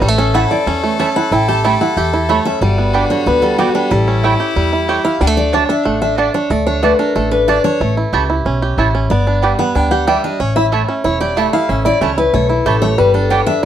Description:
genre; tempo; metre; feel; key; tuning
bluegrass; 185 BPM; 4/4; straight; unclear; A4 = 436 Hz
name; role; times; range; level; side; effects
clear fiddle; second line; 0.0-6.3 s; D4 to A4; -22 LUFS; left 8 dB; none
picked steel-string acoustic guitar; accompaniment; 0.0-13.6 s; E4 to A5; -17 LUFS; left 4 dB; none
bluegrass banjo; arpeggios; 0.0-13.7 s; D3 to G4; -17 LUFS; right 4 dB; none
upright bass; bass; 0.0-13.7 s; E1 to E2; -18 LUFS; left 1 dB; none
mandolin; stabs; 0.3-13.4 s; A3 to A5; -18 LUFS; right 7 dB; slapback echo
room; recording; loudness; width
light reverb; dry, close 1970s-style studio recording; -12 LUFS; side -10 dB against mid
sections
0.0-6.5 A section; 6.5-13.7 A section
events
steel-string acoustic guitar solo 0.0-13.7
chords
0.0 A; 2.6 G; 3.9 A7; 5.2 D; 7.8 A; 9.1 G; 10.4 A; 13.0 G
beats
| 0.02 0.34 0.67 0.99 | 1.32 1.64 1.97 2.29 | 2.62 2.94 3.27 3.59 | 3.92 4.24 4.56 4.89 | 5.21 5.54 5.86 6.18 | 6.51 6.83 7.16 7.48 | 7.81 8.13 8.45 8.78 | 9.10 9.43 9.75 10.07 | 10.40 10.72 11.05 11.37 | 11.69 12.02 12.34 12.66 | 12.99 13.31 13.63

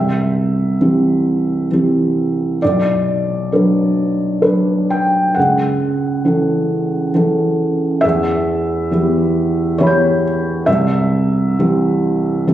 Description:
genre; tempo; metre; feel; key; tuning
neoclassical minimalist piano; 66 BPM; 3/4; rubato; unclear; A4 = 440 Hz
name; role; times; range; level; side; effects
felt-muted upright piano; solo; 0.0-12.5 s; B1 to G6; -14 LUFS; equal; none
room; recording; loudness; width
wet recital hall reverb, RT60 1.4 s; recorded on a phone in the room, club reverb; -14 LUFS; side -12 dB against mid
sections
0.0-12.5 A section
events
none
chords
0.0 C; 2.6 Bm; 5.4 A/C#; 8.0 Em; 10.7 C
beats
0.80 1.71 | 2.61 3.52 4.44 | 5.36 6.26 7.15 | 8.03 8.91 9.79 | 10.67 11.58 12.47

